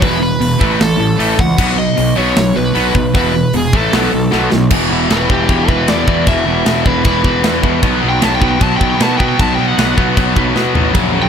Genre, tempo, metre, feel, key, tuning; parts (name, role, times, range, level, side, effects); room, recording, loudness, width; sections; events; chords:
punk rock; 154 BPM; 4/4; straight; A4 = 440 Hz
overdriven semi-hollow guitar; melody; 0.0-11.3 s; G4 to A5; -19 LUFS; right 1 dB
distorted electric guitar; riff; 0.0-11.3 s; E2 to B3; -17 LUFS; left 14 dB; overdrive
distorted electric guitar; riff; 0.0-11.3 s; E2 to B3; -17 LUFS; right 13 dB; distortion
fuzz picked electric bass; bass; 0.0-11.3 s; E1 to B2; -19 LUFS; equal; overdrive
tight metal drum kit; drums; 0.0-11.0 s; crash cymbal, hi-hat, kick drum, snare drum, toms; -17 LUFS; equal
distorted electric guitar; riff; 10.9-11.3 s; F#2 to F#3; -18 LUFS; equal; distortion
little or no reverb; -11 LUFS; side -7 dB against mid
0.0-4.7 A section; 4.7-11.3 B section
half time 0.0-4.7; drum fill 4.3-4.7, 10.6-10.9; overdriven electric guitar solo 4.7-11.3
0.0 E5; 0.6 A; 1.6 B; 3.1 E5; 3.7 A5; 3.9 B5; 4.7 E5; 7.8 B5